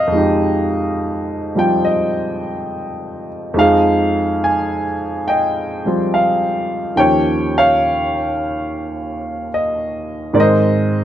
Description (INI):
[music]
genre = jazz ballad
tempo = 70 BPM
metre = 4/4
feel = swing 69% on 8ths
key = F minor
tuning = A4 = 439 Hz
[part]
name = warm grand piano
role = solo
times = 0.0-11.0 s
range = Eb2 to Ab5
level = -15 LUFS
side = equal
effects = none
[sound]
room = light reverb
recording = dark, warm production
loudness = -15 LUFS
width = side -11 dB against mid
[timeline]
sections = 0.0-3.6 A section; 3.6-11.0 A section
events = none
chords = 0.0 Fm9; 7.0 Eb9; 10.4 Abadd9